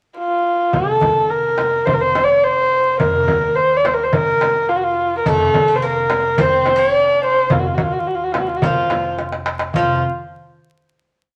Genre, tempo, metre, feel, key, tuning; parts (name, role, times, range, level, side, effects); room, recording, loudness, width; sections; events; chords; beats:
Turkish makam ensemble; 106 BPM; 4/4; straight; F makam hicaz; A4 = 439 Hz
dark kamancheh; melody; 0.2-10.0 s; F4 to D5-39c; -18 LUFS; equal
upright bass; bass; 0.7-10.0 s; F1 to Eb2; -31 LUFS; equal
darbuka; percussion; 0.7-10.0 s; -25 LUFS; equal
frame drum; percussion; 0.7-10.0 s; -28 LUFS; equal
Greek bouzouki; second line; 5.3-10.0 s; F3 to D4-40c; -28 LUFS; equal
moderate large studio reverb, RT60 0.9 s; vinyl crackle; -17 LUFS; mono
0.0-0.7 pickup bar; 0.7-9.8 A section; 9.8-11.4 final note
drum fill 9.2-9.8
0.18 | 0.74 1.31 1.87 2.44 | 3.00 3.57 4.13 4.70 | 5.26 5.82 6.39 6.95 | 7.51 8.07 8.63 9.20 | 9.76